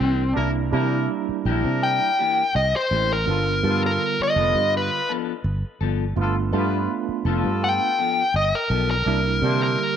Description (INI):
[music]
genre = blues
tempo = 83 BPM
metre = 4/4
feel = straight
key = unclear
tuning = A4 = 438 Hz
[part]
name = dark smooth lead guitar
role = melody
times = 0.0-10.0 s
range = C4 to G5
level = -21 LUFS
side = left 1 dB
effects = overdrive
[part]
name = clean electric guitar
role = stabs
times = 0.0-9.7 s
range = E3 to A4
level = -31 LUFS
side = left 15 dB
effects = none
[part]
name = fingered electric bass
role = bass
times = 0.0-9.8 s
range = F1 to C3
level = -24 LUFS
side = equal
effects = none
[part]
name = clear horn section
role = sustained chords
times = 0.3-9.8 s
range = B3 to C5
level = -30 LUFS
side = equal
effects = none
[part]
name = tine electric piano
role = accompaniment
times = 0.4-10.0 s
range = D3 to G4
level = -27 LUFS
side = right 13 dB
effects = medium stereo tremolo
[sound]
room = moderate spring reverb, RT60 2.2 s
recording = 1960s-style stereo with parts hard left and right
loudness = -19 LUFS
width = side -8 dB against mid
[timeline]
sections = 0.0-10.0 A section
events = lead electric guitar solo 0.0-10.0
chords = 0.0 C9; 3.3 G9; 9.1 C9